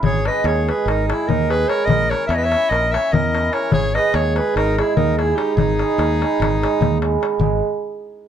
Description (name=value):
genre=balkan folk, Balkan wedding band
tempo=294 BPM (eighths)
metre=9/8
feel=straight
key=G# minor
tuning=A4 = 440 Hz
part: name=accordion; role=second line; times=0.0-7.0 s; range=D#4 to C#5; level=-24 LUFS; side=equal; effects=none
part: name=cimbalom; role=accompaniment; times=0.0-7.6 s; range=D#3 to A#4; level=-22 LUFS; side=right 7 dB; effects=none
part: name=modern bright fingered electric bass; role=bass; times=0.0-7.6 s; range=G#1 to E2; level=-22 LUFS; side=left 1 dB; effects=none
part: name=darbuka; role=percussion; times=0.0-7.6 s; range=none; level=-22 LUFS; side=left 3 dB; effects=none
part: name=clear clarinet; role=melody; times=0.1-7.0 s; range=G4 to E5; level=-21 LUFS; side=left 1 dB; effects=none
room=moderate small room reverb, RT60 0.5 s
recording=dark, warm production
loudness=-16 LUFS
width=side -9 dB against mid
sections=0.0-7.4 A section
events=none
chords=0.0 G#m; 1.9 A#dim; 3.7 G#m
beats=| 0.03 0.24 0.44 0.65 0.85 1.06 1.26 1.47 1.67 | 1.87 2.08 2.28 2.49 2.69 2.90 3.10 3.31 3.51 | 3.71 3.92 4.12 4.33 4.53 4.74 4.94 5.14 5.35 | 5.55 5.76 5.96 6.17 6.37 6.58 6.78 6.98 7.19 | 7.39 7.60